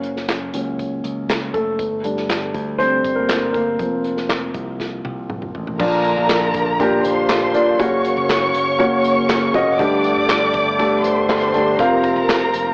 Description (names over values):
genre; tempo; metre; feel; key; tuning
piano-driven pop; 120 BPM; 4/4; straight; Bb major; A4 = 440 Hz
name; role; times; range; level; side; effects
dark upright piano; accompaniment; 0.0-12.7 s; G2 to F5; -18 LUFS; equal; cassette tape
modern bright picked electric bass; bass; 0.0-12.7 s; Eb1 to D2; -31 LUFS; equal; none
unplugged drum kit; drums; 0.0-12.7 s; crash cymbal, handclaps, hi-hat, kick drum, snare drum, toms; -23 LUFS; equal; cassette tape
warm symphonic violin section; second line; 5.8-12.7 s; Bb4 to D6; -20 LUFS; equal; cassette tape, analog delay
tonewheel organ; sustained chords; 5.8-12.7 s; C3 to G4; -28 LUFS; equal; none
room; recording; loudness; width
moderate spring reverb, RT60 1.6 s, small room ambience; home recording on cassette, AM radio sound; -15 LUFS; side -34 dB against mid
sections
0.0-5.8 A section; 5.8-12.7 B section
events
upright piano solo 0.0-5.8; drum fill 4.8-5.8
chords
0.0 Gb; 1.8 Gsus2; 3.8 Fsus4; 5.8 Bb; 7.8 Gb; 9.8 Gsus2; 11.8 Fsus4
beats
0.29 0.79 1.29 | 1.79 2.29 2.79 3.29 | 3.79 4.29 4.79 5.29 | 5.79 6.29 6.79 7.29 | 7.79 8.29 8.79 9.29 | 9.79 10.29 10.79 11.29 | 11.79 12.29